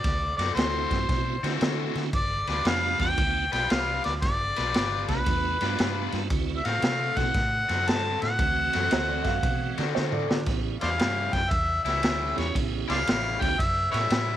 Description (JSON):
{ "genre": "electric blues shuffle", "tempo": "115 BPM", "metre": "4/4", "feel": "swing 66% on 8ths", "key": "D mixolydian", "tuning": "A4 = 441 Hz", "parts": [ { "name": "mellow harmonica", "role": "melody", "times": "0.0-14.4 s", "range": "B4 to A5", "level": "-27 LUFS", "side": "equal", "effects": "overdrive" }, { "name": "vintage muted fingered electric bass", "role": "bass", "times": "0.0-14.4 s", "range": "G1 to D3", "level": "-32 LUFS", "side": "equal", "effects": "none" }, { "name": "raw garage drum kit", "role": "drums", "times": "0.0-14.3 s", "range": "kick drum, ride cymbal, snare drum, toms", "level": "-28 LUFS", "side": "equal", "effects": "none" }, { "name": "overdriven semi-hollow guitar", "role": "riff", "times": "0.4-14.4 s", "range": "A2 to B4", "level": "-33 LUFS", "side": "left 13 dB", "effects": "none" }, { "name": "tonewheel organ", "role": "accompaniment", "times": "0.6-13.6 s", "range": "E3 to G4", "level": "-34 LUFS", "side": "right 13 dB", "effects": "slow rotary speaker, chorus vibrato" }, { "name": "dark upright piano", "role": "second line", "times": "8.9-10.4 s", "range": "A4 to F5", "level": "-33 LUFS", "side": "right 12 dB", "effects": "none" } ], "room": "light reverb, studio reverb", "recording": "1960s-style stereo with parts hard left and right", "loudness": "-23 LUFS", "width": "side -12 dB against mid", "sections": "0.0-14.4 A section", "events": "drum fill 10.0-10.5", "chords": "0.0 D7; 2.1 G7; 6.3 D7; 10.5 A7" }